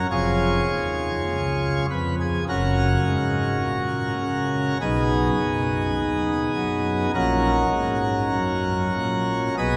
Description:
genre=classical, chorale-style piece for pipe organ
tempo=51 BPM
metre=4/4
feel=rubato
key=F# major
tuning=A4 = 438 Hz
part: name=pipe organ, plenum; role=solo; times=0.0-9.8 s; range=E#1 to D#5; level=-23 LUFS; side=equal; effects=none
room=wet cathedral reverb, RT60 6.2 s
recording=recorded in a church or concert hall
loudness=-23 LUFS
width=mono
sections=0.0-9.8 A section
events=none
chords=0.1 C#/E#; 2.5 F#; 4.8 G#m/B; 7.1 F#/A#

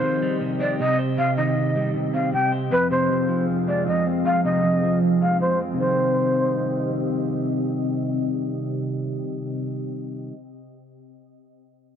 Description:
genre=hip hop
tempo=156 BPM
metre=4/4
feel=half-time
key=C minor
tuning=A4 = 440 Hz
part: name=breathy jazz flute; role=melody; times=0.0-6.9 s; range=B4 to G5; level=-23 LUFS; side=equal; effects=low-pass filter, ping-pong delay
part: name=electric guitar at the edge of break-up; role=accompaniment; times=0.0-10.4 s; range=F2 to C5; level=-24 LUFS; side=equal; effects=low-pass filter
part: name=glassy FM pad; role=sustained chords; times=0.0-9.6 s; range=C3 to F5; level=-26 LUFS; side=left 1 dB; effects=ensemble chorus, built-in reverb, low-pass filter
room=light reverb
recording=dark, warm production, nothing above 10.6 kHz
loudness=-20 LUFS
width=side -8 dB against mid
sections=0.0-5.8 A section; 5.8-8.9 B section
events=filter sweep 0.0-5.8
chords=0.0 Cm; 2.7 Fm; 5.8 Cm

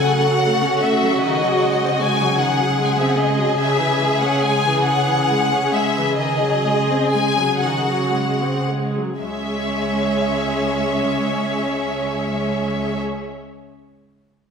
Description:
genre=classical, slow romantic movement for string orchestra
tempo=35-51 BPM (dotted quarters)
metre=6/8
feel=rubato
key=C# minor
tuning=A4 = 440 Hz
part: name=clear studio violin section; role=melody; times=0.0-13.0 s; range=D#5 to G#5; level=-22 LUFS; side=left 4 dB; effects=none
part: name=rich studio violin section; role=second line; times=0.0-13.0 s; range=F#4 to C#5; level=-23 LUFS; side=equal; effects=none
part: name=warm studio viola section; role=accompaniment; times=0.0-13.0 s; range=C#3 to A4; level=-23 LUFS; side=right 1 dB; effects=none
part: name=warm studio cello section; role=bass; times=0.0-13.0 s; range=C#2 to C#3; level=-24 LUFS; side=right 1 dB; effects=none
room=wet scoring stage reverb, RT60 1.5 s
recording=none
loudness=-17 LUFS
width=side -6 dB against mid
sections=0.0-9.2 A section; 9.2-12.2 B section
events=slowing down 2.4-9.2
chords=0.0 F#m/C#; 1.2 G#7/C#; 3.6 C#m; 6.2 G#7/C#; 9.2 C#m

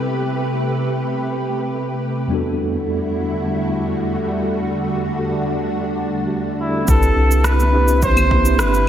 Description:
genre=sunset chillout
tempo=105 BPM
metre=4/4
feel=straight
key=C lydian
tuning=A4 = 441 Hz
part: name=mellow tine electric piano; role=accompaniment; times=0.0-8.9 s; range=E2 to B4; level=-24 LUFS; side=equal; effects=medium stereo tremolo, auto-pan, digital delay
part: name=soft string machine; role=sustained chords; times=0.0-8.9 s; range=C3 to B4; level=-21 LUFS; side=equal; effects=ensemble chorus
part: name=clear flugelhorn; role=melody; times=6.6-8.9 s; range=E4 to C5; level=-19 LUFS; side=equal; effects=none
part: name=round analog bass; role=bass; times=6.9-8.9 s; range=G1 to C2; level=-16 LUFS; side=equal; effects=none
part: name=electronic cabasa, rim click and claves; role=drums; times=6.9-8.9 s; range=none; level=-23 LUFS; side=equal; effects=none
part: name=electronic kick drum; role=drums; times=6.9-8.4 s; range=none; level=-19 LUFS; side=equal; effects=overdrive
part: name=congas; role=percussion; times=7.6-8.3 s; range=none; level=-27 LUFS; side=right 3 dB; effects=none
room=wet lush hall reverb, RT60 1.7 s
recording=big arena sound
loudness=-16 LUFS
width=side -10 dB against mid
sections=0.0-6.9 A section; 6.9-8.9 B section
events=filter sweep on tine electric piano 0.0-6.9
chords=0.0 Am9; 2.3 Em11; 6.9 Cmaj9

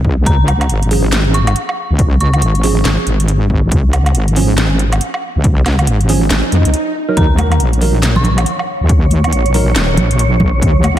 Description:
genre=deep dubstep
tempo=139 BPM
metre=4/4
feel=swing 61% on 16ths, half-time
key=unclear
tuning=A4 = 440 Hz
part: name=wobble bass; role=bass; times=0.0-11.0 s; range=Eb1 to F2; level=-12 LUFS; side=equal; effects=chorus
part: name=electronic kick drum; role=drums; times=0.0-10.7 s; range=none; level=-14 LUFS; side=equal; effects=overdrive
part: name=dark detuned synth bell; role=melody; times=0.3-2.6, 7.2-8.5 s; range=Bb5 to Db6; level=-23 LUFS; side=left 1 dB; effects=chorus, dub echo
part: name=garage drum kit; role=drums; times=0.3-11.0 s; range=handclaps, hi-hat, snare drum, woodblock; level=-19 LUFS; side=right 1 dB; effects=none
part: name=tine electric piano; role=stabs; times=0.9-9.7 s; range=F3 to Bb4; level=-20 LUFS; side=right 4 dB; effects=analog chorus, dub echo
part: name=swell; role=sound effects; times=6.4-7.2 s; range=none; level=-22 LUFS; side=right 2 dB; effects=none
part: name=wind-like tuned noise texture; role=texture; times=8.1-11.0 s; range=Db5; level=-21 LUFS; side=right 2 dB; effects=built-in reverb, lush chorus
part: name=congas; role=percussion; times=7.4-10.9 s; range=none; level=-20 LUFS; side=equal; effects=dub echo
room=light reverb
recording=none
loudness=-11 LUFS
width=side -12 dB against mid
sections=0.0-11.0 A section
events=swell 6.4-7.2; break 6.7-7.2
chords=0.3 Db5; 7.2 Eb5

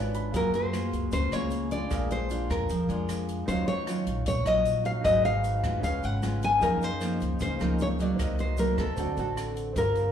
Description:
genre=bossa nova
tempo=153 BPM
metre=4/4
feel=straight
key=unclear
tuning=A4 = 440 Hz
part: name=clear baby grand piano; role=accompaniment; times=0.0-10.1 s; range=C4 to F6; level=-38 LUFS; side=right 6 dB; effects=slapback echo
part: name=nylon-string guitar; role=accompaniment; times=0.0-10.1 s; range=Gb2 to Bb4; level=-31 LUFS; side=equal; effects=none
part: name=upright bass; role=bass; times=0.0-10.1 s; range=G1 to Gb2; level=-32 LUFS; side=equal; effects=none
part: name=compact cocktail drum kit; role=drums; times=0.1-10.0 s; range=hi-hat, kick drum, rim click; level=-37 LUFS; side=equal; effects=none
part: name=egg shaker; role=percussion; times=0.1-10.1 s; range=none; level=-52 LUFS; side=right 4 dB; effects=none
part: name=nylon-string guitar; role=melody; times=0.4-10.1 s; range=A4 to Ab5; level=-28 LUFS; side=left 2 dB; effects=slapback echo
room=moderate digital room reverb, RT60 1.0 s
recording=live gig heard through the venue's PA, club reverb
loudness=-25 LUFS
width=side -9 dB against mid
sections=0.0-9.8 A section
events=grand piano fill 0.0-0.3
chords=0.3 Gbmaj9; 1.9 Bb7; 3.5 Ebm9; 5.1 Abm7; 5.8 Db7; 6.6 Gbmaj13; 8.2 Cm7b5; 9.0 D7

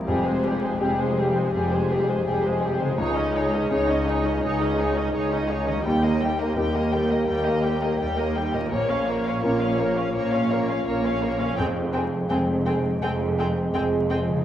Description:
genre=cinematic, emotional film score for orchestra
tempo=84 BPM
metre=4/4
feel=rubato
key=F minor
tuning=A4 = 440 Hz
part: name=warm grand piano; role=accompaniment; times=0.0-14.4 s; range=Bb1 to G5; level=-29 LUFS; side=equal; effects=none
part: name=concert harp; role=arpeggios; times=0.0-14.4 s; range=Bb2 to Bb4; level=-34 LUFS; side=left 2 dB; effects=none
part: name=muted chamber violin section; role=melody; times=0.1-14.2 s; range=Ab4 to G5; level=-30 LUFS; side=left 3 dB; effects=none
part: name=muted symphonic violin section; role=second line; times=0.1-14.2 s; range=Eb4 to Db5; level=-31 LUFS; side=equal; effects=none
part: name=muted symphonic viola section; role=accompaniment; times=0.1-14.2 s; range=G3 to Eb4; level=-31 LUFS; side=right 2 dB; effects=none
part: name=dark French horn section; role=sustained chords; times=0.1-14.4 s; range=Ab3 to Ab4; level=-28 LUFS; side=equal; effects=none
part: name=muted symphonic cello section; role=bass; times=0.1-14.4 s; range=Db2 to Bb2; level=-29 LUFS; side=right 1 dB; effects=none
part: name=muted symphonic double bass section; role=bass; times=0.1-14.4 s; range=F1 to Eb2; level=-30 LUFS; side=right 1 dB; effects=none
room=wet recital hall reverb, RT60 1.5 s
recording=recorded in a church or concert hall, vinyl crackle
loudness=-21 LUFS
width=side -11 dB against mid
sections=0.1-14.4 A section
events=none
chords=0.1 Fmadd9; 3.0 Dbsus2; 5.9 Eb; 8.7 Bbm; 11.6 Fmadd9

